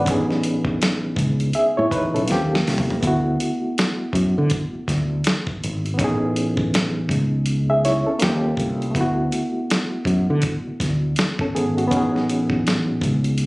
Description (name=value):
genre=R&B, neo-soul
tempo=81 BPM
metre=4/4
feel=swing 60% on 16ths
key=unclear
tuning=A4 = 440 Hz
part: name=barky reed electric piano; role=accompaniment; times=0.0-13.5 s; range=A3 to E5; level=-22 LUFS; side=equal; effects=overdrive, tremolo
part: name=fretless electric bass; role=bass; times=0.0-13.5 s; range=G#1 to D3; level=-22 LUFS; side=equal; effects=none
part: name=dusty soul sampler-style drum kit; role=drums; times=0.1-13.5 s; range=hi-hat, kick drum, snare drum, toms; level=-23 LUFS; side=equal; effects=none
room=little or no reverb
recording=recorded on a phone in the room, studio reverb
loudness=-18 LUFS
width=side -23 dB against mid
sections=0.0-13.5 A section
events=drum fill 2.3-3.0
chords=0.1 Amaj9#11; 2.3 D#6; 3.0 D6; 6.0 Amaj9#11; 8.2 D#6; 8.9 D6; 11.9 Amaj9#11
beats=| 0.06 0.80 1.54 2.28 | 3.02 3.76 4.50 5.24 | 5.98 6.72 7.46 8.21 | 8.95 9.69 10.43 11.17 | 11.91 12.65 13.39